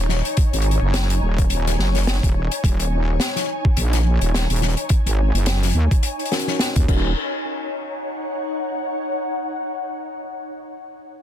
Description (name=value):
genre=glitch hop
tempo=106 BPM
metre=4/4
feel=swing 57% on 16ths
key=Eb minor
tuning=A4 = 440 Hz
part: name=wobble bass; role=bass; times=0.0-7.1 s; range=Eb1 to Eb2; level=-19 LUFS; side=equal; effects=chorus
part: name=ethereal airy pad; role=texture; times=0.0-9.4 s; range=Eb4 to Ab5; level=-26 LUFS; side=left 1 dB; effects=ensemble chorus, built-in reverb, sidechain pumping
part: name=open jazz drum kit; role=drums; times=0.1-7.0 s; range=crash cymbal, hi-hat, snare drum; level=-25 LUFS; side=left 3 dB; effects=none
part: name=electronic kick drum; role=drums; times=0.4-7.0 s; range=none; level=-18 LUFS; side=equal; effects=none
part: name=bell-like tine electric piano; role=stabs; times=6.3-7.1 s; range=Db4 to Bb4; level=-29 LUFS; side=equal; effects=vintage 12-bit sampler grit, sidechain pumping, low-pass filter, ping-pong delay
room=studio reverb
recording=dense, heavily limited modern master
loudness=-18 LUFS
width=side -10 dB against mid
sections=0.0-7.2 A section; 7.2-9.4 B section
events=none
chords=0.0 Ebm7